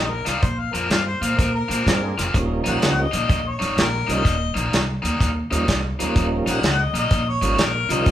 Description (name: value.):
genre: electric blues shuffle.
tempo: 126 BPM.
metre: 4/4.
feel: swing 66% on 8ths.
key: Eb mixolydian.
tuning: A4 = 440 Hz.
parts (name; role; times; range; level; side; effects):
mellow harmonica; melody; 0.0-8.1 s; Bb4 to Gb5; -25 LUFS; left 3 dB; none.
overdriven electric guitar; riff; 0.0-8.1 s; Eb3 to F4; -26 LUFS; left 2 dB; none.
upright bass; bass; 0.0-8.1 s; Eb1 to Bb2; -25 LUFS; equal; none.
warm soul drum kit; drums; 0.3-8.1 s; hi-hat, kick drum, snare drum; -22 LUFS; equal; none.
tonewheel organ; accompaniment; 1.9-8.1 s; F3 to Ab4; -26 LUFS; right 3 dB; overdrive, slow rotary speaker.
room: moderate large studio reverb, RT60 0.9 s.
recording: band playing live in one room.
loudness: -18 LUFS.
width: side -11 dB against mid.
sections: 0.0-2.3 A section; 2.3-8.1 B section.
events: harmonica solo 2.3-8.1.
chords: 0.4 Bb9; 2.3 Eb9.